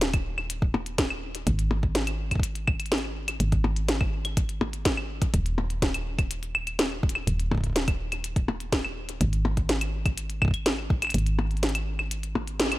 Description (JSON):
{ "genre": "IDM", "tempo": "124 BPM", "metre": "4/4", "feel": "straight", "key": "unclear", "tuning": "A4 = 440 Hz", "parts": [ { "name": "woody FM bass", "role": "bass", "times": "0.0-12.8 s", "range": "Eb1 to Ab1", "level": "-29 LUFS", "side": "equal", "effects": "none" }, { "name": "glitchy drum kit", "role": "drums", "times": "0.0-12.8 s", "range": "claves, hi-hat, percussion blips, snare drum", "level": "-28 LUFS", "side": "left 1 dB", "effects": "ping-pong delay" }, { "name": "electronic kick drum", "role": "drums", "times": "0.1-11.0 s", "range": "none", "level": "-26 LUFS", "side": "equal", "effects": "none" } ], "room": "light reverb, digital ambience", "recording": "none", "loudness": "-24 LUFS", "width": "side -17 dB against mid", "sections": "0.0-12.8 A section", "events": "kick drops out 11.1-12.8; band accent 12.6", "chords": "none", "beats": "0.01 0.50 0.98 | 1.47 1.95 2.44 2.92 | 3.40 3.89 4.37 4.85 | 5.34 5.82 6.31 6.79 | 7.27 7.76 8.24 8.72 | 9.21 9.69 10.18 10.66 | 11.14 11.63 12.11 12.60" }